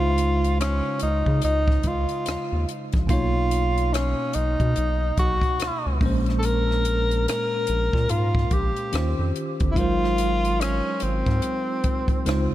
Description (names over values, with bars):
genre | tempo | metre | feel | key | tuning
R&B, neo-soul | 72 BPM | 4/4 | swing 61% on 16ths | Db major | A4 = 440 Hz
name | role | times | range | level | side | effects
warm tenor saxophone | melody | 0.0-12.5 s | C4 to Bb4 | -25 LUFS | equal | tape echo
bell-like tine electric piano | accompaniment | 0.0-12.5 s | Bb2 to F5 | -28 LUFS | right 1 dB | medium stereo tremolo, slapback echo
round analog bass | bass | 0.0-12.5 s | G1 to Db3 | -24 LUFS | equal | none
compact cocktail drum kit | drums | 0.2-12.5 s | hi-hat, kick drum, rim click | -26 LUFS | equal | none
room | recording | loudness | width
light reverb, studio ambience | none | -20 LUFS | side -14 dB against mid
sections
0.0-12.5 A section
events
none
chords
0.0 Dbmaj9; 3.1 Cbmaj9#11; 6.0 Bbm7; 8.9 Eb13; 9.8 Ab13